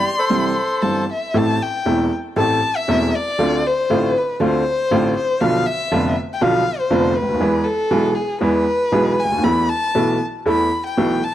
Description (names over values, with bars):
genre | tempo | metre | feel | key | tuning
tango | 118 BPM | 4/4 | rubato | A minor | A4 = 440 Hz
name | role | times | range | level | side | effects
bandoneon | melody | 0.0-1.0 s | G4 to D5 | -23 LUFS | equal | none
warm violin | second line | 0.0-11.3 s | G#4 to C6 | -20 LUFS | left 2 dB | none
bright upright piano | accompaniment | 0.3-11.2 s | E1 to A4 | -18 LUFS | right 1 dB | none
room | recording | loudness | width
light reverb | dry, close 1970s-style studio recording | -16 LUFS | side -12 dB against mid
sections
0.0-1.3 A section; 1.3-11.3 B section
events
violin solo 1.3-11.3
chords
0.0 C; 1.3 Am; 3.4 Dm7; 5.4 Bdim; 7.4 E; 9.4 Esus4